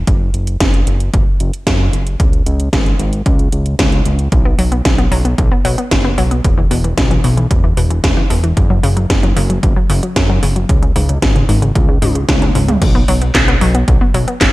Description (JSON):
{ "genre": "italo disco", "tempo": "113 BPM", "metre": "4/4", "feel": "straight", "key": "unclear", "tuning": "A4 = 440 Hz", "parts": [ { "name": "fat analog bass", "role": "bass", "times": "0.0-14.5 s", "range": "E1 to F#2", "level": "-16 LUFS", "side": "equal", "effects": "none" }, { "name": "electronic kick drum", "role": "drums", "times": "0.1-14.5 s", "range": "none", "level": "-15 LUFS", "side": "equal", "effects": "none" }, { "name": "house drum kit", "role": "drums", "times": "0.1-14.5 s", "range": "crash cymbal, handclaps, hi-hat, snare drum, toms", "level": "-18 LUFS", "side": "equal", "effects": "gated reverb" }, { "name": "wide unison pluck", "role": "arpeggios", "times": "4.5-14.4 s", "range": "G#2 to B3", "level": "-19 LUFS", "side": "left 2 dB", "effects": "tape echo" } ], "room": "digital ambience", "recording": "none", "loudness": "-11 LUFS", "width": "side -18 dB against mid", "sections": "0.0-12.8 A section; 12.8-14.5 B section", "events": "drum fill 12.0-12.8", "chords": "0.1 N.C.; 2.2 C#5; 4.3 B5; 6.4 E5; 8.6 F#5; 10.7 C#5; 12.8 B5", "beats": "| 0.07 0.60 1.14 1.67 | 2.20 2.73 3.26 3.79 | 4.32 4.85 5.38 5.91 | 6.45 6.98 7.51 8.04 | 8.57 9.10 9.63 10.16 | 10.69 11.22 11.76 12.29 | 12.82 13.35 13.88 14.41" }